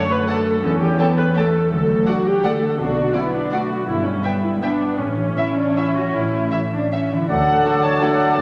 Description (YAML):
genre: classical, orchestral ballroom waltz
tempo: 147-182 BPM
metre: 3/4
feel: rubato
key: D major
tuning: A4 = 445 Hz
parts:
  - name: muted symphonic viola section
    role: accompaniment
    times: 0.0-8.1 s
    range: A3 to C#5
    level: -24 LUFS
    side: equal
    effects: none
  - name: concert harp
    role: arpeggios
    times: 0.0-8.4 s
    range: E2 to A4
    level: -26 LUFS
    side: equal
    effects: none
  - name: muted symphonic cello section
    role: bass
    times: 0.0-8.4 s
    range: D2 to F#4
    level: -27 LUFS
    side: equal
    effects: none
  - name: muted symphonic violin section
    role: melody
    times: 0.3-8.4 s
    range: E5 to A5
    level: -28 LUFS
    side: equal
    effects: none
  - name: muted symphonic violin section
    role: second line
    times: 0.3-8.1 s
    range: F#4 to G5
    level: -32 LUFS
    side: equal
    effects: none
  - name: muted symphonic double bass section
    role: bass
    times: 0.6-8.4 s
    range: G1 to E2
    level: -29 LUFS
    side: equal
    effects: none
  - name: clear oboe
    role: second line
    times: 7.3-8.4 s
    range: D5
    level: -26 LUFS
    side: equal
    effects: none
  - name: dark clarinet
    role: second line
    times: 7.3-8.4 s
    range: A4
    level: -30 LUFS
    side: equal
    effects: none
  - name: silver concert flute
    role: second line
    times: 7.3-8.4 s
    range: A4 to D5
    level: -25 LUFS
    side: equal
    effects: none
  - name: mellow bassoon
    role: accompaniment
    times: 7.3-8.4 s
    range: F#3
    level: -28 LUFS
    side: equal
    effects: none
  - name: mellow French horn section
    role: sustained chords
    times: 7.3-8.4 s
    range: A3 to D4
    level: -26 LUFS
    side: equal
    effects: none
room: wet scoring stage reverb, RT60 1.7 s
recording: none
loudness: -19 LUFS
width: mono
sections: 0.0-7.3 A section; 7.3-8.4 B section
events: none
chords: 0.0 D/F#; 0.6 A7/E; 1.7 D; 2.8 Bm; 3.9 Em/G; 5.0 A; 7.3 D